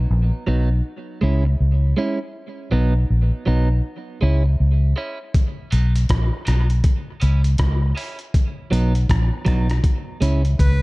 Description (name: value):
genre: dub reggae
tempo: 80 BPM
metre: 4/4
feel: swing 60% on 16ths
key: C# dorian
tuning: A4 = 437 Hz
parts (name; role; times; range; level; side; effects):
- vintage muted fingered electric bass; bass; 0.0-10.8 s; A#1 to C#2; -17 LUFS; equal; none
- clean electric guitar; accompaniment; 0.5-10.5 s; F#3 to E4; -26 LUFS; right 3 dB; high-pass filter, tape echo
- dusty soul sampler-style drum kit; drums; 5.3-10.8 s; hi-hat, kick drum, rim click; -21 LUFS; equal; none
- warm harmonica; melody; 10.6-10.8 s; B4; -30 LUFS; equal; none
room: digital ambience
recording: dark, warm production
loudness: -17 LUFS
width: side -23 dB against mid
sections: 0.0-10.8 A section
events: break 0.0-5.3; filter sweep on clean electric guitar 2.3-8.3; drum fill 9.8-10.8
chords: 0.0 B; 0.8 C#m; 2.3 B; 3.8 C#m; 5.3 B; 6.8 C#m; 8.3 B; 9.8 C#m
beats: 0.10 0.85 1.60 | 2.35 3.10 3.85 4.59 | 5.34 6.09 6.84 7.59 | 8.34 9.09 9.84 10.59